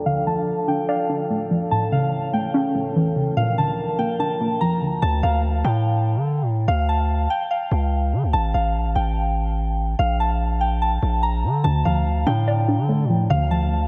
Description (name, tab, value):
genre	hip hop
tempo	145 BPM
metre	4/4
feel	half-time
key	D harmonic minor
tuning	A4 = 441 Hz
part	warbly dusty pluck	accompaniment	0.0-5.0, 11.6-13.9 s	A2 to D5	-25 LUFS	equal	chorus, low-pass filter
part	dark brass ensemble	sustained chords	0.0-5.0 s	E3 to Bb4	-30 LUFS	equal	low-pass filter
part	soft synth bell	melody	0.1-13.9 s	F5 to Bb5	-27 LUFS	equal	chorus, low-pass filter, diffuse ambient delay
part	distorted 808-style bass	bass	5.0-13.9 s	A1 to D3	-23 LUFS	equal	distortion
room	wet cathedral reverb, RT60 5.5 s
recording	dreamy mix soaked in reverb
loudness	-21 LUFS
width	mono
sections	0.0-5.0 A section; 5.0-13.9 B section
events	filter sweep 0.0-5.0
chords	0.0 Dm; 1.7 A; 3.4 Bb; 5.0 Dm; 8.3 G7sus2/A; 10.0 N.C.; 11.6 Dm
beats	| 0.06 0.47 0.89 1.30 | 1.71 2.13 2.54 2.96 | 3.37 3.78 4.20 4.61 | 5.03 5.44 5.85 6.27 | 6.68 7.09 7.51 7.92 | 8.34 8.75 9.16 9.58 | 9.99 10.40 10.82 11.23 | 11.64 12.06 12.47 12.89 | 13.30 13.71